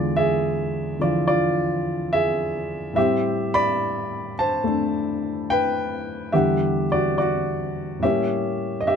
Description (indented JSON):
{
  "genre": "solo jazz",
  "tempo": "71 BPM",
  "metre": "4/4",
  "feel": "swing 68% on 8ths",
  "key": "unclear",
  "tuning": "A4 = 440 Hz",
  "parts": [
    { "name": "warm grand piano", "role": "solo", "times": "0.0-9.0 s", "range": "E2 to B5", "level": "-20 LUFS", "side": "equal", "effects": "none" }
  ],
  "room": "little or no reverb",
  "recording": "close, detailed microphones",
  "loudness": "-20 LUFS",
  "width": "side -7 dB against mid",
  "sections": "0.0-9.0 A section",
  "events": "none",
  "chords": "0.0 E7b9; 3.0 Am9; 6.3 Em9; 8.0 A7b9",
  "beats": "0.43 1.28 2.12 | 2.96 3.81 4.65 5.49 | 6.33 7.17 8.02 8.86"
}